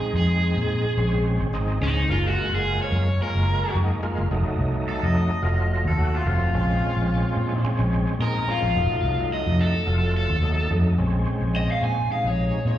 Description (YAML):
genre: straight-eighth soul blues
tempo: 108 BPM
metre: 4/4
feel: swing 54% on 16ths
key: Bb minor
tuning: A4 = 440 Hz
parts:
  - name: raw garage guitar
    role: melody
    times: 0.0-12.8 s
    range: Eb4 to Ab5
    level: -27 LUFS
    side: equal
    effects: overdrive, phaser, slapback echo
  - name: overdriven tonewheel organ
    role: accompaniment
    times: 0.0-12.8 s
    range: C3 to Gb4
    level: -29 LUFS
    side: right 1 dB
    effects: slow rotary speaker, chorus vibrato, slapback echo
  - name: vintage muted fingered electric bass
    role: bass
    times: 0.0-12.8 s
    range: F1 to Bb2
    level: -22 LUFS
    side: equal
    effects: none
room: digital ambience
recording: live gig heard through the venue's PA, recital hall reverb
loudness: -20 LUFS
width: side -12 dB against mid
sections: 0.0-11.0 A section; 11.0-12.8 B section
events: overdriven electric guitar solo 0.0-11.0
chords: 0.0 Bbm9; 2.1 Gbmaj7; 4.3 F7b9; 6.5 Bbm9; 8.8 F7b9; 11.0 Bbm9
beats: 0.42 0.98 1.53 | 2.09 2.65 3.20 3.76 | 4.31 4.87 5.43 5.98 | 6.54 7.09 7.65 8.20 | 8.76 9.31 9.87 10.43 | 10.98 11.54 12.09 12.65